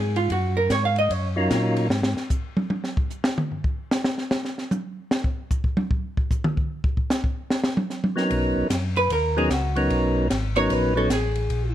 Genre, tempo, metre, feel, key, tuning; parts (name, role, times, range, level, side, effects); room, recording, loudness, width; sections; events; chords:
soul jazz organ trio; 150 BPM; 4/4; swing 64% on 8ths; A4 = 440 Hz
vintage hollow-body jazz guitar; accompaniment; 0.0-1.3, 9.0-11.7 s; F4 to F5; -24 LUFS; right 2 dB
mellow tonewheel organ; bass; 0.0-2.1, 8.3-11.7 s; Ab1 to Bb2; -25 LUFS; equal; chorus vibrato, slow rotary speaker
compact cocktail drum kit; drums; 0.2-11.6 s; hi-hat, kick drum, ride cymbal, snare drum, toms; -25 LUFS; equal
percussive tonewheel organ; melody; 1.4-1.9, 8.2-11.1 s; Gb3 to Db5; -23 LUFS; equal; slow rotary speaker
light reverb; close, detailed microphones; -21 LUFS; side -12 dB against mid
0.0-11.7 A section
hollow-body jazz guitar solo 0.0-11.7; drum solo 1.9-8.3
0.0 Ebm7; 1.9 N.C.; 8.3 Bmaj7